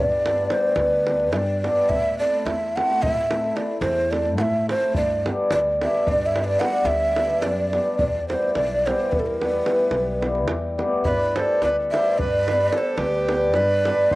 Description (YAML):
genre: balkan folk, Balkan wedding band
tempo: 216 BPM (eighths)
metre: 11/8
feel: straight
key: unclear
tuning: A4 = 441 Hz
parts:
  - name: breathy mellow ney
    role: melody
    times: 0.0-14.1 s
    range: A4 to F#5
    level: -22 LUFS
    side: right 1 dB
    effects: cassette tape
  - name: cimbalom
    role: accompaniment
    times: 0.0-14.2 s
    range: G3 to A4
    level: -23 LUFS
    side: left 2 dB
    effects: cassette tape
  - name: upright bass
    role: bass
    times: 0.0-14.2 s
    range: B1 to A2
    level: -29 LUFS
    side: equal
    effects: tube saturation
  - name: davul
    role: percussion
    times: 0.1-14.2 s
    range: none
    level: -30 LUFS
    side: right 2 dB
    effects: none
  - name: accordion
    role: second line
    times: 11.1-14.2 s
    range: G4 to C5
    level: -28 LUFS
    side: right 2 dB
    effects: cassette tape
room: moderate spring reverb, RT60 2.5 s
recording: home recording on cassette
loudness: -19 LUFS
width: side -19 dB against mid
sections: 0.0-11.0 A section; 11.0-14.2 A section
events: none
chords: 0.0 G; 1.9 Am; 4.9 G; 8.0 Em; 11.0 G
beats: 0.23 0.51 0.78 1.06 1.34 1.62 | 1.89 2.17 2.45 2.72 3.00 3.28 3.55 3.83 4.11 4.38 4.66 | 4.94 5.22 5.49 5.77 6.05 6.32 6.60 6.88 7.16 7.43 7.71 | 7.99 8.27 8.54 8.82 9.10 9.38 9.66 9.93 10.21 10.49 10.77 | 11.05 11.33 11.61 11.88 12.16 12.44 12.72 13.00 13.28 13.56 13.84 | 14.12